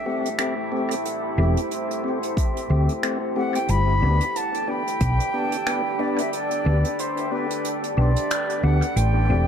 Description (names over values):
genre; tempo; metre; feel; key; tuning
ambient dub; 91 BPM; 4/4; swing 57% on 16ths; A minor; A4 = 438 Hz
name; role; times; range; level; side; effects
mellow concert flute; melody; 0.0-9.5 s; B4 to B5; -27 LUFS; equal; dub echo
deep dark ambient pad; sustained chords; 0.0-9.5 s; A3 to C5; -29 LUFS; right 1 dB; chorus, built-in reverb
tonewheel organ; stabs; 0.1-9.5 s; A3 to G4; -28 LUFS; left 2 dB; fast rotary speaker, dub echo
jazz brush drum kit; drums; 0.3-9.1 s; finger snaps, hi-hat; -32 LUFS; right 2 dB; dub echo
hollow-body short-scale fingered electric bass; bass; 1.4-9.5 s; E1 to D2; -19 LUFS; equal; none
electronic kick drum; drums; 2.4-5.2 s; none; -24 LUFS; equal; none
room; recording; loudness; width
moderate spring reverb, RT60 1.5 s, small room ambience; none; -20 LUFS; side -8 dB against mid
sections
0.0-9.0 A section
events
kick drops out 6.3-9.0; band accent 8.3-8.6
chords
0.0 Am7; 3.7 G; 9.0 Am7